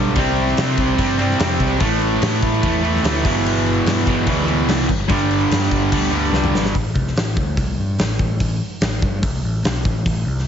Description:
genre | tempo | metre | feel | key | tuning
hard rock | 146 BPM | 4/4 | straight | A minor | A4 = 440 Hz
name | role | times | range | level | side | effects
cranked stack guitar | riff | 0.0-6.7 s | E2 to C4 | -23 LUFS | left 10 dB | overdrive
crunchy overdriven guitar | riff | 0.0-6.7 s | E2 to C4 | -21 LUFS | right 10 dB | none
overdriven picked electric bass | bass | 0.0-10.5 s | G1 to C3 | -22 LUFS | equal | none
distorted electric guitar | riff | 0.2-6.7 s | E2 to C4 | -23 LUFS | equal | distortion
huge arena drum kit | drums | 0.2-10.4 s | crash cymbal, hi-hat, kick drum, snare drum, toms | -21 LUFS | left 1 dB | none
room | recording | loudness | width
light reverb, small room ambience | heavily compressed radio sound, multiband compression, nothing above 7.8 kHz | -16 LUFS | side -8 dB against mid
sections
0.0-6.7 A section; 6.7-10.5 B section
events
drum fill 6.3-6.7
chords
0.2 C5; 1.8 A5; 3.2 Em/G; 5.1 G5; 6.7 Am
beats
| 0.16 0.57 0.98 1.39 | 1.81 2.22 2.63 3.04 | 3.45 3.86 4.27 4.68 | 5.10 5.51 5.92 6.33 | 6.75 7.16 7.57 7.99 | 8.40 8.82 9.23 9.65 | 10.06

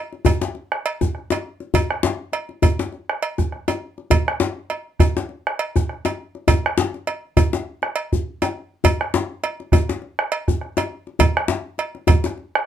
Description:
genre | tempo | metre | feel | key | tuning
west african traditional, West African drum ensemble | 101 BPM | 4/4 | swing 56% on 16ths | none | none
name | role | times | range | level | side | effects
djembe | percussion | 0.1-12.5 s | none | -21 LUFS | left 6 dB | none
bombo | percussion | 0.3-12.7 s | none | -18 LUFS | right 2 dB | none
cowbell | percussion | 0.3-12.2 s | none | -22 LUFS | right 5 dB | none
room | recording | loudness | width
light reverb | close, detailed microphones | -19 LUFS | side -10 dB against mid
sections
0.0-12.7 A section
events
none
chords
none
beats
0.55 1.15 | 1.74 2.33 2.92 3.52 | 4.11 4.70 5.29 5.89 | 6.48 7.07 7.66 8.25 | 8.84 9.43 10.02 10.61 | 11.20 11.79 12.38

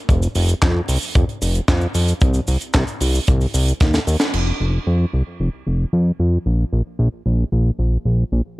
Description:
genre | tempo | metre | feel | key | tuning
italo disco | 113 BPM | 4/4 | straight | unclear | A4 = 439 Hz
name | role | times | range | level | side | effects
fat analog bass | bass | 0.1-8.4 s | F1 to F2 | -18 LUFS | equal | none
kick drum | drums | 0.1-3.9 s | none | -17 LUFS | equal | none
tight funk drum kit | drums | 0.1-4.4 s | cabasa, crash cymbal, handclaps, hi-hat, snare drum | -24 LUFS | right 1 dB | none
room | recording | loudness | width
little or no reverb | dark, warm production | -16 LUFS | side -20 dB against mid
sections
0.0-4.3 A section; 4.3-8.6 B section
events
drum fill 3.8-4.3; band accent 4.2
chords
none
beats
| 0.09 0.62 1.15 1.68 | 2.21 2.75 3.28 3.81 | 4.34 4.87 5.40 5.93 | 6.46 6.99 7.52 8.05

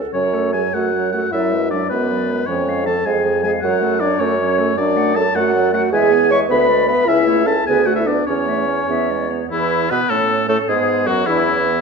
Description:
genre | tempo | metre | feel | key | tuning
quick classical-period movement for wind quintet | 104 BPM (dotted quarters) | 6/8 | rubato | F# minor, A major from 4.8 s | A4 = 441 Hz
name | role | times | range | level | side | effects
breathy clarinet | accompaniment | 0.0-11.8 s | E3 to A4 | -24 LUFS | right 9 dB | none
dark bassoon | bass | 0.0-11.8 s | C#2 to B2 | -21 LUFS | right 3 dB | none
silver concert flute | melody | 0.1-11.6 s | E4 to G#5 | -25 LUFS | left 8 dB | none
clear oboe | second line | 0.1-11.8 s | E4 to C#6 | -21 LUFS | left 4 dB | none
clear French horn | accompaniment | 0.1-11.8 s | B3 to C#5 | -19 LUFS | equal | none
room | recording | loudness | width
wet recital hall reverb, RT60 1.5 s | minimal, uncompressed stereo recording | -15 LUFS | side -5 dB against mid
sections
0.1-9.5 A section; 9.5-11.8 B section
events
none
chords
0.1 F#m; 1.3 G#m7b5/F#; 2.5 C#/E#; 3.6 F#m; 4.8 D/F#; 5.9 E; 6.5 E7/D; 7.1 A/C#; 7.7 Bm7/D; 8.3 A/E; 8.9 E; 9.5 A/E; 10.7 E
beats
| 0.14 0.74 | 1.33 1.90 | 2.48 3.06 | 3.63 4.20 | 4.78 5.35 | 5.92 6.50 | 7.08 7.67 | 8.28 8.90 | 9.52 10.11 | 10.69 11.27

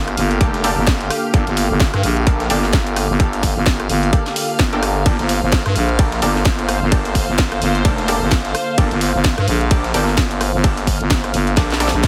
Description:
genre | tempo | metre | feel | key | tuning
bass house | 129 BPM | 4/4 | swing 58% on 16ths | G minor | A4 = 440 Hz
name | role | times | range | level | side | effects
sweeping resonant pad | sustained chords | 0.0-12.1 s | D3 to C5 | -28 LUFS | equal | chorus, sidechain pumping
growling FM bass | bass | 0.0-12.1 s | F1 to G2 | -21 LUFS | equal | overdrive, sidechain pumping
granular cloud pad | texture | 0.0-12.1 s | F5 | -29 LUFS | equal | built-in reverb, sidechain pumping
garage drum kit | drums | 0.1-12.1 s | hi-hat, ride cymbal, rim click, snare drum | -26 LUFS | equal | none
breakbeat sampler-style drum kit | drums | 0.2-12.1 s | hi-hat, snare drum | -34 LUFS | equal | none
orchestra-hit-like synth stab | stabs | 0.4-12.0 s | Bb3 to A4 | -26 LUFS | equal | built-in reverb, cassette tape, sidechain pumping, tape echo
electronic kick drum | drums | 0.4-12.1 s | none | -18 LUFS | equal | none
room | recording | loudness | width
light reverb, digital ambience | heavily compressed radio sound, multiband compression | -17 LUFS | mono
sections
0.0-12.1 A section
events
drum fill 11.6-12.1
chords
0.0 Gmadd9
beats
0.41 0.87 | 1.34 1.80 2.27 2.73 | 3.20 3.66 4.13 4.59 | 5.06 5.52 5.99 6.45 | 6.92 7.38 7.85 8.31 | 8.78 9.24 9.71 10.18 | 10.64 11.11 11.57 12.04

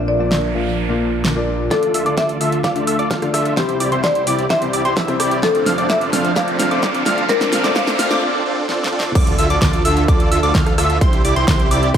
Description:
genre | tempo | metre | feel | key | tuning
EDM, festival progressive house | 129 BPM | 4/4 | straight | D minor | A4 = 440 Hz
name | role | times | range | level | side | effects
marimba with hard mallets | melody | 0.0-8.2 s | G4 to F5 | -22 LUFS | left 2 dB | tape echo
warm concert grand piano | accompaniment | 0.0-8.2 s | Bb2 to F5 | -24 LUFS | left 4 dB | sidechain pumping, tape echo
lush unison pad | sustained chords | 0.0-12.0 s | C2 to Bb5 | -25 LUFS | right 2 dB | chorus, sidechain pumping
wide detuned saw bass | bass | 0.0-1.7, 9.2-12.0 s | Bb1 to D2 | -22 LUFS | equal | chorus, sidechain pumping
noise sweep, riser and impact | sound effects | 0.2-11.0 s | none | -28 LUFS | right 1 dB | none
pop drum kit | drums | 0.3-12.0 s | crash cymbal, hi-hat, rim click, snare drum | -22 LUFS | right 1 dB | none
plucky unison lead | arpeggios | 1.7-12.0 s | C6 to F6 | -22 LUFS | equal | vintage 12-bit sampler grit, sidechain pumping, tape echo
dense compressed supersaw | riff | 1.7-12.0 s | C4 to F5 | -22 LUFS | right 2 dB | vintage 12-bit sampler grit, sidechain pumping, low-pass filter, tape echo
electronic kick drum | drums | 1.7-12.0 s | none | -19 LUFS | equal | high-pass filter on kick, high-pass filter on room
room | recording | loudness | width
moderate concert hall reverb, RT60 2.3 s | high-pass filter | -14 LUFS | side -8 dB against mid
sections
0.0-1.7 A section; 1.7-9.2 B section; 9.2-12.0 C section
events
filter sweep on analog synth pad 0.0-1.7, 1.7-9.2; noise sweep 0.2-1.7; build-up 1.7-9.2; drum fill 1.7-8.2, 8.7-9.2; filter sweep on digital synth lead 1.7-9.2; filter sweep 1.7-9.2; riser 3.7-8.2; break 8.2-9.2; drop 9.2-12.0; impact 9.2-11.0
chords
0.0 Bb; 1.7 Dm; 3.6 C; 5.4 F6; 7.3 Bb; 9.2 Dm; 11.0 C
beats
0.32 0.78 1.25 | 1.71 2.18 2.64 3.11 | 3.57 4.04 4.50 4.97 | 5.43 5.90 6.36 6.83 | 7.29 7.76 8.22 8.69 | 9.15 9.62 10.08 10.55 | 11.01 11.48 11.95

